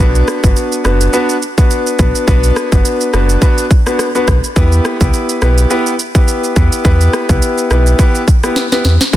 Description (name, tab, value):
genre	dancehall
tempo	105 BPM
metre	4/4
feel	swing 56% on 16ths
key	E minor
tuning	A4 = 440 Hz
part	warm concert grand piano	accompaniment	0.0-9.2 s	B3 to B4	-15 LUFS	left 1 dB	sidechain pumping
part	sub bass with octave	bass	0.0-9.2 s	F#1 to E2	-12 LUFS	equal	none
part	island pop drum kit	drums	0.2-9.2 s	kick drum, rim click, shaker, snare drum	-13 LUFS	equal	overdrive
room	digital ambience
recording	dense, heavily limited modern master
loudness	-10 LUFS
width	side -14 dB against mid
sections	0.0-9.1 A section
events	drum fill 8.6-9.1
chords	0.0 Bm; 4.6 Em